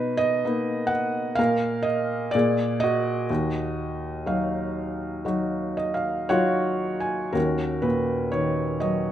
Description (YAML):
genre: classical, lyrical solo piano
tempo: 55-65 BPM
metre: 4/4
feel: rubato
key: Eb minor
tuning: A4 = 440 Hz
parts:
  - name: felt-muted upright piano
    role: solo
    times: 0.0-9.1 s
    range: Eb2 to Ab5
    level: -23 LUFS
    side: equal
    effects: none
room: moderate recital hall reverb, RT60 1.5 s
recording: dark, warm production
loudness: -23 LUFS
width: side -11 dB against mid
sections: 0.0-7.3 A section; 7.3-9.1 B section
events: felt piano fill 5.3-7.3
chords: 0.0 Bmaj7; 1.4 N.C.; 2.3 Bb7; 3.3 Ebmadd9; 7.3 Ebm7